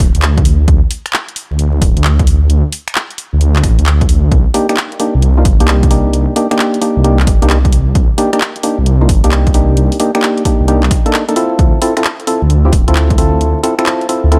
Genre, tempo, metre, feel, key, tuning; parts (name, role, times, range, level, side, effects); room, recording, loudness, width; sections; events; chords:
UK garage, two-step garage; 132 BPM; 4/4; swing 66% on 16ths; D phrygian; A4 = 440 Hz
dark detuned saw bass; bass; 0.0-14.4 s; D1 to D2; -13 LUFS; equal; sidechain pumping
electronic kick drum; drums; 0.0-13.2 s; -14 LUFS; equal
garage drum kit; drums; 0.0-14.4 s; finger snaps, handclaps, hi-hat; -20 LUFS; equal
percussive organ stab; stabs; 4.5-14.4 s; Bb3 to A4; -16 LUFS; equal; chorus, tape echo
light reverb, digital ambience; vinyl crackle; -12 LUFS; mono
0.0-14.4 A section
break 11.1-11.6
0.0 D5; 4.3 Cm7; 11.6 Dm7